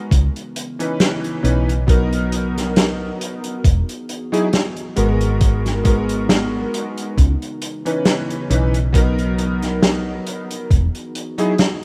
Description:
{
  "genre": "vaporwave",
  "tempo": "68 BPM",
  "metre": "4/4",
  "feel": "swing 55% on 16ths",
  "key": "unclear",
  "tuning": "A4 = 440 Hz",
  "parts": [
    { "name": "clear electric grand piano", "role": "accompaniment", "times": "0.0-11.5 s", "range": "E3 to B4", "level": "-24 LUFS", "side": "equal", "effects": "ensemble chorus, analog delay" },
    { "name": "warbly tape-like pad", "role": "sustained chords", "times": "0.0-11.8 s", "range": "C#3 to A#4", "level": "-33 LUFS", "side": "equal", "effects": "chorus, built-in reverb" },
    { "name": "woody fretless electric bass", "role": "bass", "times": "0.1-10.9 s", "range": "E1 to C#2", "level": "-22 LUFS", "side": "equal", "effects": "ensemble chorus" },
    { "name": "electronic kick drum", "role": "drums", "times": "0.1-10.9 s", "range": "none", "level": "-17 LUFS", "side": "equal", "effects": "none" },
    { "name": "vintage drum kit", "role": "drums", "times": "0.1-11.8 s", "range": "hi-hat, snare drum", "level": "-23 LUFS", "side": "equal", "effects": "none" }
  ],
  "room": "light reverb, small room ambience",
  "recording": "rough home demo mix",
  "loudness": "-19 LUFS",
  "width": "mono",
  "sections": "0.0-11.8 A section",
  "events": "none",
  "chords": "0.1 C#m9; 1.9 Bmaj7; 3.6 Emaj9; 5.0 G#m9; 7.2 C#m9; 8.9 Bmaj7; 10.7 Emaj9"
}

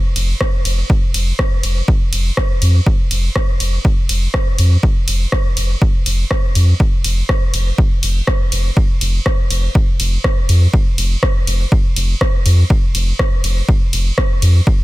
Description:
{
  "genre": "dub techno",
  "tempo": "122 BPM",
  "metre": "4/4",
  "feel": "straight",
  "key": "unclear",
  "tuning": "A4 = 440 Hz",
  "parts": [
    { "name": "soft dub sub bass", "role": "bass", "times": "0.2-14.6 s", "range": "F1 to F2", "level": "-14 LUFS", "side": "equal", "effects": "sidechain pumping" },
    { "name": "deep house drum kit", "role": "drums", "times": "0.2-14.5 s", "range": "hi-hat, ride cymbal, rim click", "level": "-21 LUFS", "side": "equal", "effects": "soft clipping on snare" },
    { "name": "electronic kick drum", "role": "drums", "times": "0.4-14.8 s", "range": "none", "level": "-15 LUFS", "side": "equal", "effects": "none" }
  ],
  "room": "little or no reverb",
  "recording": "dense, heavily limited modern master",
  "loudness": "-13 LUFS",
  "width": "side -18 dB against mid",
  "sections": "0.0-14.8 A section",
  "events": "none",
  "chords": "none"
}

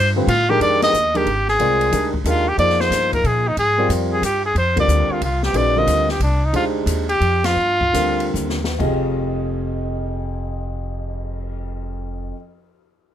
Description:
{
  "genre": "modal jazz",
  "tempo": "128-183 BPM",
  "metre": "3/4",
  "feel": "swing 64% on 8ths",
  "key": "F dorian",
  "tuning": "A4 = 442 Hz",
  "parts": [
    { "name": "clear trumpet", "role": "melody", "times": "0.0-8.4 s", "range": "D4 to Eb5", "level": "-18 LUFS", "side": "equal", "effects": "none" },
    { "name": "upright bass", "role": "bass", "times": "0.0-12.3 s", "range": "F1 to Bb2", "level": "-22 LUFS", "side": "equal", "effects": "none" },
    { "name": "warm concert grand piano", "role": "accompaniment", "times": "0.2-12.4 s", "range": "F2 to Eb5", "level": "-23 LUFS", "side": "equal", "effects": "none" },
    { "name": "open jazz drum kit", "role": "drums", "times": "0.3-11.5 s", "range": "crash cymbal, cymbal swell, hi-hat, kick drum, ride cymbal, snare drum", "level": "-28 LUFS", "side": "left 2 dB", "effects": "none" }
  ],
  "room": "little or no reverb",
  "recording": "close, detailed microphones",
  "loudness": "-16 LUFS",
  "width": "side -10 dB against mid",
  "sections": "0.6-8.8 A section; 8.8-11.6 B section",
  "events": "band accent 0.8, 4.7, 7.4; slowing down 6.5-8.8; drum fill 8.4-8.8",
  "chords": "0.0 F; 0.6 Fm9; 4.6 Gm7; 8.8 Fm9"
}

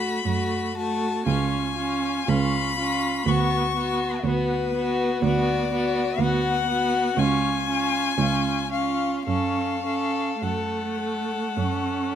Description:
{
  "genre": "classical, slow romantic movement for string quartet",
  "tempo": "52-63 BPM",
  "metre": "4/4",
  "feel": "rubato",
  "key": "F# minor",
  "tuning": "A4 = 440 Hz",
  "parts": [
    { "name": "rich violin", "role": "melody", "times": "0.0-12.2 s", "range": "B4 to C#6", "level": "-28 LUFS", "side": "left 8 dB", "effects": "none" },
    { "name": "rich violin", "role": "second line", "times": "0.0-12.1 s", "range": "E#4 to A4", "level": "-28 LUFS", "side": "left 2 dB", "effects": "none" },
    { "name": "rich viola", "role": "accompaniment", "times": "0.0-12.2 s", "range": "A3 to C#4", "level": "-27 LUFS", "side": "right 3 dB", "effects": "none" },
    { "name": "rich cello", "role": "bass", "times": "0.0-12.2 s", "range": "C#2 to F#2", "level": "-27 LUFS", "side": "right 4 dB", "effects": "none" }
  ],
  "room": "moderate recital hall reverb, RT60 1.5 s",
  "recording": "close, detailed microphones",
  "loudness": "-22 LUFS",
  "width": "side -9 dB against mid",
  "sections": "0.0-12.2 A section",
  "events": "none",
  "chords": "0.0 F#m; 1.3 C#; 3.3 Bm/D; 7.2 C#; 9.3 F#m"
}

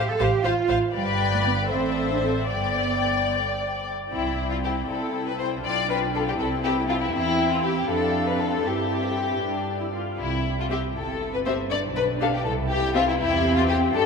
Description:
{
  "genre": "quick classical-period movement for string orchestra",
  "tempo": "79 BPM (dotted quarters)",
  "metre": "6/8",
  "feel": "rubato",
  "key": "C major",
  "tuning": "A4 = 440 Hz",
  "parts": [
    { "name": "dark studio violin section", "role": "melody", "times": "0.0-14.1 s", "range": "D5 to G5", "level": "-31 LUFS", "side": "left 8 dB", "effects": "none" },
    { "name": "rich studio violin section", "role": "second line", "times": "0.0-14.1 s", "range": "E4 to F5", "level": "-25 LUFS", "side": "left 4 dB", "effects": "none" },
    { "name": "warm studio viola section", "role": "accompaniment", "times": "0.0-14.1 s", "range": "C4 to D5", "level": "-29 LUFS", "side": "left 1 dB", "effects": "none" },
    { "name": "dark studio cello section", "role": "bass", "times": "0.0-14.1 s", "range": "G3 to A4", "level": "-30 LUFS", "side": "right 7 dB", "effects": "none" },
    { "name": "dark symphonic double bass section", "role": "bass", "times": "0.0-14.1 s", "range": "G1 to G2", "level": "-30 LUFS", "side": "right 2 dB", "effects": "none" }
  ],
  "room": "wet cathedral reverb, RT60 7.1 s",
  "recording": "in a vast, echoing space",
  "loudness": "-22 LUFS",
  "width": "side -5 dB against mid",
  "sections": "0.0-4.1 A section; 4.1-14.1 B section",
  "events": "none",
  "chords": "0.0 F/A; 1.0 G; 1.7 Am; 2.5 G; 4.1 C; 5.6 G7/B; 6.4 C; 7.1 C/E; 7.9 Dm7/F; 8.6 C/G; 9.4 G5; 10.2 C; 11.7 G/B; 12.5 C; 13.2 C/E"
}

